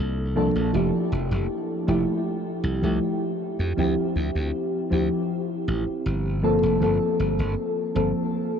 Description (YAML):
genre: vaporwave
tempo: 79 BPM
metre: 4/4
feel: straight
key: F major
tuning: A4 = 437 Hz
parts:
  - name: mellow FM electric piano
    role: accompaniment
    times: 0.0-8.6 s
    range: F3 to A4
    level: -23 LUFS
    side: equal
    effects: lush chorus, ping-pong delay
  - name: glassy slap bass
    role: bass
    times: 0.0-8.1 s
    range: F1 to F2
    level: -25 LUFS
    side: equal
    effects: none
room: wet huge ambient reverb, RT60 7.5 s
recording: dreamy mix soaked in reverb, cassette tape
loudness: -22 LUFS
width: side -7 dB against mid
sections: 0.0-8.6 A section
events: none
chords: 0.0 C13sus4; 0.7 Fmaj9; 3.8 Dm11; 6.4 Gm11